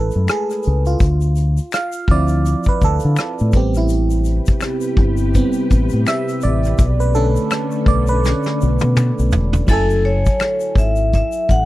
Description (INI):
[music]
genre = R&B, neo-soul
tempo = 83 BPM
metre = 4/4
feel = swing 57% on 16ths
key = F# minor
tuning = A4 = 440 Hz
[part]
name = FM electric piano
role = accompaniment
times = 0.0-11.7 s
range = D3 to G#5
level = -21 LUFS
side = right 2 dB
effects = chorus, phaser
[part]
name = deep dub fingered electric bass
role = bass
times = 0.0-11.7 s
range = E1 to D3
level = -16 LUFS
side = equal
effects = none
[part]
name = vintage brush drum kit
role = drums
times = 0.1-11.7 s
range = crash cymbal, hi-hat, kick drum, rim click, snare drum, toms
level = -17 LUFS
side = equal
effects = none
[part]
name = tube shaker and finger snaps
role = percussion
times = 0.1-11.7 s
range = none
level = -34 LUFS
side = left 8 dB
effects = none
[part]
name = soft string machine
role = sustained chords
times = 4.2-9.7 s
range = C3 to B4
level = -26 LUFS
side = left 2 dB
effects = ensemble chorus
[part]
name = vibraphone with hard mallets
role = melody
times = 9.7-11.7 s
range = A4 to F#5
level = -19 LUFS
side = left 2 dB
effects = slapback echo
[sound]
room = small room ambience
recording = dry, close 1970s-style studio recording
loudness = -14 LUFS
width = side -16 dB against mid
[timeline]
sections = 0.0-9.7 A section; 9.7-11.7 B section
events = FM electric piano solo 0.0-9.7; drum fill 8.2-9.7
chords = 0.0 F#m9 (rootless); 1.0 Dm9; 3.5 Am9; 6.8 Bm9; 9.7 F#m9